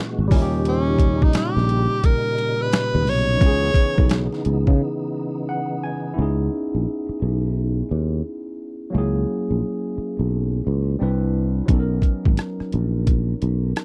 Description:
R&B, neo-soul; 87 BPM; 4/4; swing 62% on 16ths; C# dorian; A4 = 440 Hz
barky tine electric piano; accompaniment; 0.0-13.8 s; A#2 to G#5; -28 LUFS; equal; overdrive, lush chorus
tonewheel organ; sustained chords; 0.0-6.1 s; A#2 to F#4; -32 LUFS; equal; overdrive, chorus vibrato, fast rotary speaker
sustaining fretless electric bass; bass; 0.2-13.7 s; G#1 to C#3; -24 LUFS; equal
boom bap sampler-style drum kit; drums; 0.3-4.8, 11.7-13.8 s; finger snaps, hi-hat, kick drum, rim click, snare drum; -20 LUFS; equal
breathy tenor saxophone; melody; 0.7-4.5 s; C#4 to C#5; -25 LUFS; equal; slapback echo
little or no reverb; dry, close 1970s-style studio recording; -21 LUFS; mono
0.0-6.2 A section; 6.2-13.8 B section
break 4.8-6.2; tine electric piano fill 5.1-6.2
0.3 D#7; 3.4 C#m9; 6.2 C#m7; 8.9 F#9; 11.0 Cmaj7; 11.7 Bmaj7

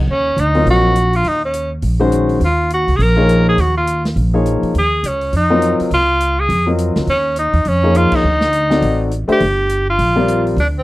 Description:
modal jazz; 206 BPM; 4/4; swing 60% on 8ths; Eb dorian; A4 = 436 Hz
upright bass; bass; 0.0-10.8 s; G1 to F2; -17 LUFS; equal
bright tenor saxophone; melody; 0.1-10.8 s; C4 to Bb4; -16 LUFS; equal
vintage drum kit; drums; 0.4-10.7 s; crash cymbal, hi-hat, kick drum, snare drum; -27 LUFS; equal
clear grand piano; accompaniment; 0.6-10.6 s; Eb3 to Fb5; -16 LUFS; left 2 dB
small room reverb; dry, close 1970s-style studio recording; -12 LUFS; side -18 dB against mid
0.1-9.4 A section; 9.4-10.8 B section
band accent 8.1
0.1 Ebm9; 4.7 Bbm; 8.2 D7b9; 9.4 Gm7

